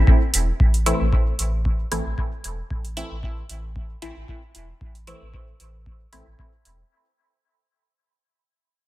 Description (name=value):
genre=dub techno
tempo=114 BPM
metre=4/4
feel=swing 53% on 16ths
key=A minor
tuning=A4 = 442 Hz
part: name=soft dub sub bass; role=bass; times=0.0-6.8 s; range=E1 to A1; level=-24 LUFS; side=equal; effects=sidechain pumping
part: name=electronic kick drum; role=drums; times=0.1-6.5 s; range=none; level=-20 LUFS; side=equal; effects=none
part: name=electronic hi-hat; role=drums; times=0.3-6.8 s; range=none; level=-25 LUFS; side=right 3 dB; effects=none
part: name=filtered dub chord stab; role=stabs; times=0.9-6.3 s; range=E3 to E4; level=-28 LUFS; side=equal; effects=phaser, dub echo
room=digital ambience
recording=none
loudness=-20 LUFS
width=side -16 dB against mid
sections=0.0-6.9 A section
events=fade-out 0.0-6.9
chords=0.0 Am